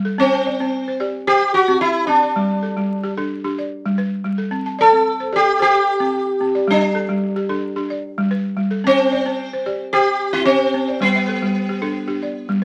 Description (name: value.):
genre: west african traditional, West African string and xylophone music.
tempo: 111 BPM.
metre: 4/4.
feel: straight.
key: C major.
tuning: A4 = 440 Hz.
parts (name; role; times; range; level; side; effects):
balafon; arpeggios; 0.0-12.6 s; G3 to A5; -24 LUFS; equal; none.
sitar; melody; 0.2-12.6 s; B3 to A4; -19 LUFS; equal; none.
room: moderate small room reverb, RT60 0.5 s.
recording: vinyl crackle.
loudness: -19 LUFS.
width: mono.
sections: 0.0-12.6 A section.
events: none.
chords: 0.2 C; 2.4 G; 4.5 C5; 6.7 G; 8.8 C; 11.0 G.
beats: | 0.20 0.74 1.28 1.82 | 2.36 2.90 3.44 3.98 | 4.52 5.07 5.61 6.15 | 6.69 7.23 7.77 8.31 | 8.85 9.39 9.93 10.47 | 11.01 11.55 12.09 12.63.